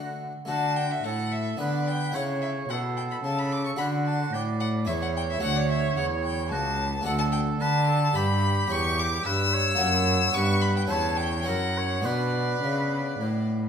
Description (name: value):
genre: classical, baroque-style sonata movement with continuo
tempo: 109 BPM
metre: 3/4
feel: straight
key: D major, B minor from 7.1 s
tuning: A4 = 440 Hz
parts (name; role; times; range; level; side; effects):
- clear oboe; second line; 0.0-13.5 s; F#4 to D5; -32 LUFS; right 6 dB; none
- harpsichord; accompaniment; 0.0-13.7 s; C#2 to D5; -31 LUFS; left 1 dB; none
- rich cello; bass; 0.0-13.7 s; C#2 to D3; -28 LUFS; right 1 dB; none
- clear violin; melody; 0.5-13.5 s; D5 to E6; -29 LUFS; left 4 dB; none
room: moderate recital hall reverb, RT60 1.7 s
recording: minimal, uncompressed stereo recording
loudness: -23 LUFS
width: side -7 dB against mid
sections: 0.5-13.7 A section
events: none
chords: 0.5 D; 1.6 G/D; 2.1 A; 3.8 D; 4.9 E5; 5.4 D; 8.2 G; 8.7 C#dim/E; 9.8 F#7; 10.4 G; 10.9 C#m7b5/E; 11.5 F#7; 12.1 Bm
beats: | 0.48 1.04 1.59 | 2.15 2.70 3.25 | 3.80 4.34 4.89 | 5.44 5.98 6.53 | 7.07 7.62 8.16 | 8.71 9.25 9.80 | 10.36 10.91 11.48 | 12.05 12.63 13.21